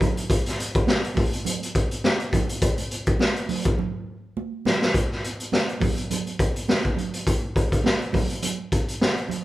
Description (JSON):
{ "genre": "funk", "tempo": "103 BPM", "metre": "4/4", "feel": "swing 56% on 16ths", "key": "none", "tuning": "none", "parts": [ { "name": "raw garage drum kit", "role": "drums", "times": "0.0-9.4 s", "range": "hi-hat, kick drum, snare drum", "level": "-22 LUFS", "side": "equal", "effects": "none" }, { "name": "congas", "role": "percussion", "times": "0.0-9.4 s", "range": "none", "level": "-31 LUFS", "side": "right 6 dB", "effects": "none" } ], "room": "light reverb", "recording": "band playing live in one room", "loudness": "-21 LUFS", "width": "side -16 dB against mid", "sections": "0.0-4.9 A section; 4.9-9.4 B section", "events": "drum fill 3.8-4.9", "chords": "none" }